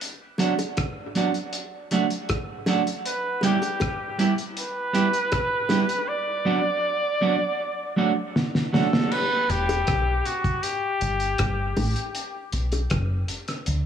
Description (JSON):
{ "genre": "dub reggae", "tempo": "79 BPM", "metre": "4/4", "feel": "straight", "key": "unclear", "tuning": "A4 = 440 Hz", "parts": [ { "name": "cloth-damped thuddy drum kit", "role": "drums", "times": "0.0-13.8 s", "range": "crash cymbal, hi-hat, kick drum, rim click, snare drum", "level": "-28 LUFS", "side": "equal", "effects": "none" }, { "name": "semi-hollow electric guitar", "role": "accompaniment", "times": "0.4-8.9 s", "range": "F#3 to G4", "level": "-25 LUFS", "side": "right 4 dB", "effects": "dub echo" }, { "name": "bongos", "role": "percussion", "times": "0.4-12.9 s", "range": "none", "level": "-33 LUFS", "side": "left 2 dB", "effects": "dub echo" }, { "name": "clear flugelhorn", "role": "melody", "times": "3.1-12.1 s", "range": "F#4 to D5", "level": "-26 LUFS", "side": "equal", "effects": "dub echo" }, { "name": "deep dub fingered electric bass", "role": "bass", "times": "9.5-13.9 s", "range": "E1 to D2", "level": "-24 LUFS", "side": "equal", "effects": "none" } ], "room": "moderate spring reverb, RT60 2.5 s", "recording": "small room ambience", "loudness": "-22 LUFS", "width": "side -8 dB against mid", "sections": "0.0-9.1 A section; 9.1-13.9 B section", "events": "break 0.0-3.0; drum fill 8.4-9.1", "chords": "0.0 Bm; 1.5 D; 3.0 Em; 6.1 Bm; 7.6 D; 9.1 Em; 12.1 B5" }